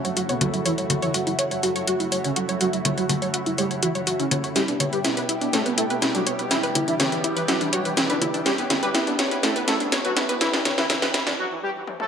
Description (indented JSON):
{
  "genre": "melodic techno",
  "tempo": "123 BPM",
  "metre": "4/4",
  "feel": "straight",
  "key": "F# phrygian",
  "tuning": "A4 = 440 Hz",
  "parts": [
    { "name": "analog synth brass", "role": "melody", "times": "0.0-12.1 s", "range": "B2 to A4", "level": "-27 LUFS", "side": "right 1 dB", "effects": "chorus, digital delay" },
    { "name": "lush unison pad", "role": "sustained chords", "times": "0.0-11.3 s", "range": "B2 to G4", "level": "-30 LUFS", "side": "equal", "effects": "chorus, phaser" },
    { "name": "wide unison pluck", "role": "arpeggios", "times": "0.0-11.3 s", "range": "D4 to C#5", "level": "-27 LUFS", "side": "equal", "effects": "digital delay" },
    { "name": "techno drum kit", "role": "drums", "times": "0.0-12.1 s", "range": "congas, hi-hat, snare drum, toms", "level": "-24 LUFS", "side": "left 1 dB", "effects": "gated reverb" }
  ],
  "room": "wet plate reverb, RT60 2.5 s",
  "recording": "bright 1980s-style digital production, high-pass filter",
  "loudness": "-20 LUFS",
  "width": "side -7 dB against mid",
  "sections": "0.0-12.1 A section",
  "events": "build-up 0.0-12.1; filter sweep on synth pluck 0.0-12.1; filter sweep on analog polysynth 0.0-12.1; drum fill 4.6-11.4, 11.9; break 11.4-12.1",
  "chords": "0.0 F#m7"
}